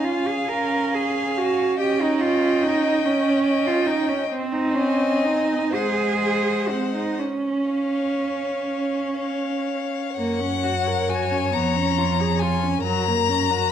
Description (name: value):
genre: classical, slow romantic movement for string quartet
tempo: 39-49 BPM (dotted quarters)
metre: 6/8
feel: rubato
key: Db major, F# major from 10.2 s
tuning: A4 = 440 Hz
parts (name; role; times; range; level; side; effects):
- rich violin; melody; 0.0-13.7 s; F5 to A#5; -28 LUFS; left 12 dB; none
- dark violin; second line; 0.0-13.7 s; A#4 to F5; -28 LUFS; left 4 dB; none
- rich viola; accompaniment; 0.0-13.7 s; F#3 to A#4; -25 LUFS; right 1 dB; none
- rich cello; bass; 0.0-13.7 s; E#2 to Bb4; -24 LUFS; right 4 dB; none
room: moderate recital hall reverb, RT60 1.5 s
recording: dark, warm production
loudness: -20 LUFS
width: side -9 dB against mid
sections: 0.0-10.2 A section; 10.2-13.7 B section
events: none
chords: 0.0 Db; 1.8 Eb7/Db; 4.3 Ab/C; 5.7 Ab7; 7.2 Db; 10.2 F#; 11.5 C#7/E#; 12.9 F#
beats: 0.49 | 1.79 3.05 | 4.29 5.74 | 7.19 8.69 | 10.18 11.54 | 12.86